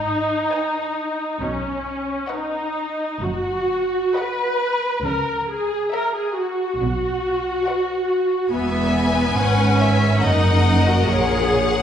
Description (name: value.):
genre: classical, slow romantic movement for string orchestra.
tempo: 61-71 BPM.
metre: 4/4.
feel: rubato.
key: unclear.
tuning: A4 = 440 Hz.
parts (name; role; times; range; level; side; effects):
rich studio viola section; accompaniment; 0.0-11.8 s; B3 to B4; -21 LUFS; equal; none.
rich studio cello section; bass; 0.0-11.8 s; E2 to C#3; -23 LUFS; right 2 dB; none.
warm studio double bass section; bass; 0.0-11.8 s; E1 to C#2; -24 LUFS; right 2 dB; none.
clear studio violin section; melody; 0.5-11.8 s; E5 to G#5; -27 LUFS; left 3 dB; none.
rich studio violin section; second line; 0.5-11.8 s; A#4 to F#5; -25 LUFS; left 3 dB; none.
room: wet recital hall reverb, RT60 1.5 s.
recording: recorded in a church or concert hall, nothing above 10.7 kHz.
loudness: -18 LUFS.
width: side -9 dB against mid.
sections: 0.0-11.8 A section.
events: none.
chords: 0.0 G#m; 1.4 B; 5.0 A#dim/C#; 6.8 B; 8.5 E; 10.2 F#.